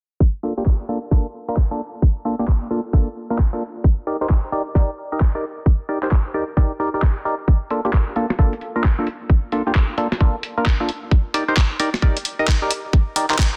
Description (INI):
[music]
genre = UK garage, two-step garage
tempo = 132 BPM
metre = 4/4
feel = swing 63% on 16ths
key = G minor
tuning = A4 = 440 Hz
[part]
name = electronic kick drum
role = drums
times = 0.2-13.5 s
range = none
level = -18 LUFS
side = equal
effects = none
[part]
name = percussive organ stab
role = stabs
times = 0.4-13.4 s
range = Bb3 to Eb5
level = -25 LUFS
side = equal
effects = chorus, phaser, vintage 12-bit sampler grit, digital delay
[part]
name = breakbeat sampler-style drum kit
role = drums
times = 0.7-13.5 s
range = handclaps, hi-hat, snare drum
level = -28 LUFS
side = equal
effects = none
[sound]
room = light reverb, digital ambience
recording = dense, heavily limited modern master, low-pass filter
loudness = -20 LUFS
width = mono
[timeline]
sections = 0.2-13.6 A section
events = filter sweep on synth stab 0.2-13.6; filter sweep 0.2-13.6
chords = 0.2 Gm9 (rootless); 3.8 Cm9 (rootless); 7.5 Gm9 (rootless); 11.1 Cm9 (rootless)